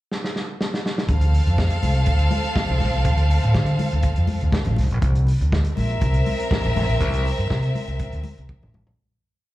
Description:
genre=disco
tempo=122 BPM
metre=4/4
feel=straight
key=D minor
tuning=A4 = 440 Hz
part: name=vintage drum kit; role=drums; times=0.1-9.0 s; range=hi-hat, kick drum, snare drum, toms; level=-25 LUFS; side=equal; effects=none
part: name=clear studio violin section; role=second line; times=1.1-8.7 s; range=C4 to F5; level=-26 LUFS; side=equal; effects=slapback echo
part: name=overdriven fingered electric bass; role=bass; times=1.1-9.0 s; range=A1 to D3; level=-19 LUFS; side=equal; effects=none
part: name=congas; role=percussion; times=1.1-8.9 s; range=none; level=-30 LUFS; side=left 3 dB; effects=slapback echo
room=small room ambience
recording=live gig heard through the venue's PA, club reverb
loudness=-18 LUFS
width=side -16 dB against mid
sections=0.0-1.1 pickup bar; 1.1-9.0 verse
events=drum fill 0.1-1.1, 8.5-9.0; fade-out 7.0-9.0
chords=0.0 N.C.; 1.1 Dm7; 4.8 C7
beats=0.11 0.60 | 1.09 1.58 2.07 2.56 | 3.05 3.54 4.04 4.53 | 5.03 5.52 6.01 6.51 | 7.00 7.50 8.00 8.49

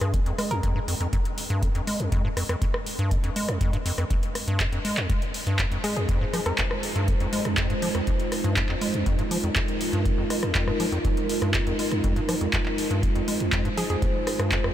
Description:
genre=acid house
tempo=121 BPM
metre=4/4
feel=straight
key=F minor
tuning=A4 = 440 Hz
part: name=acid bass, square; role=riff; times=0.0-14.7 s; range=F2 to Ab3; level=-27 LUFS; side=equal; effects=overdrive, sidechain pumping, ping-pong delay
part: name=electro analog drum machine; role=drums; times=0.0-14.7 s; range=handclaps, hi-hat, rim click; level=-30 LUFS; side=equal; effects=none
part: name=electronic kick drum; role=drums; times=0.1-14.6 s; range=none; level=-27 LUFS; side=equal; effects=none
part: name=hollow square pluck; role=melody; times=0.5-0.9, 5.8-6.8, 13.8-14.0 s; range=Ab4 to Bb4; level=-36 LUFS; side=equal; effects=chorus, tape echo
part: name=dark analog pad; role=sustained chords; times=5.1-14.7 s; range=Ab3 to C5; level=-29 LUFS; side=right 1 dB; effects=chorus, sidechain pumping
room=moderate huge ambient reverb, RT60 8.8 s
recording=dreamy mix soaked in reverb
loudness=-23 LUFS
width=side -11 dB against mid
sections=0.0-14.7 A section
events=filter sweep on acid bass 0.0-14.7; drum fill 4.6-5.1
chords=0.0 Fm7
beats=0.14 0.63 | 1.13 1.62 2.12 2.62 | 3.11 3.61 4.10 4.60 | 5.10 5.59 6.09 6.58 | 7.08 7.58 8.07 8.57 | 9.06 9.56 10.05 10.55 | 11.05 11.54 12.04 12.53 | 13.03 13.53 14.02 14.52

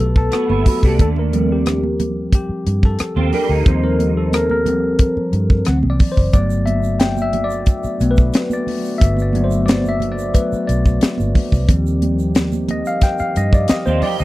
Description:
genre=lush 1970s-style soul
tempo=90 BPM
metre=4/4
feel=straight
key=unclear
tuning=A4 = 440 Hz
part: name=tine electric piano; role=accompaniment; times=0.0-14.2 s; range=E3 to G5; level=-19 LUFS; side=left 1 dB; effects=phaser
part: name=vintage muted fingered electric bass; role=bass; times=0.0-14.2 s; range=F#1 to G2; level=-19 LUFS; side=equal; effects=none
part: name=tight funk drum kit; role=drums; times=0.2-14.2 s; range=hi-hat, kick drum, rim click, snare drum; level=-15 LUFS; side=equal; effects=none
part: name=electric guitar through a small old amp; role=riff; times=0.3-4.5, 13.9-14.2 s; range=A3 to G4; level=-23 LUFS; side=right 7 dB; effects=ensemble chorus
part: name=congas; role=percussion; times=0.5-14.2 s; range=none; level=-26 LUFS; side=right 5 dB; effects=none
part: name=mellow French horn section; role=sustained chords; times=6.3-14.2 s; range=D3 to G4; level=-30 LUFS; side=right 2 dB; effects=none
part: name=tube shaker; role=percussion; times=6.3-14.2 s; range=none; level=-41 LUFS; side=right 24 dB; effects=none
room=little or no reverb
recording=dry, close 1970s-style studio recording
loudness=-14 LUFS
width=side -17 dB against mid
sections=0.0-14.2 A section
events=tine electric piano solo 0.0-14.2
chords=0.0 Gmaj7; 1.0 Eb6; 5.7 D7; 6.3 Gmaj7; 11.7 Eb6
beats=0.32 | 0.99 1.66 2.33 2.99 | 3.66 4.33 5.00 5.67 | 6.34 7.01 7.67 8.34 | 9.01 9.68 10.35 11.02 | 11.69 12.35 13.02 13.69

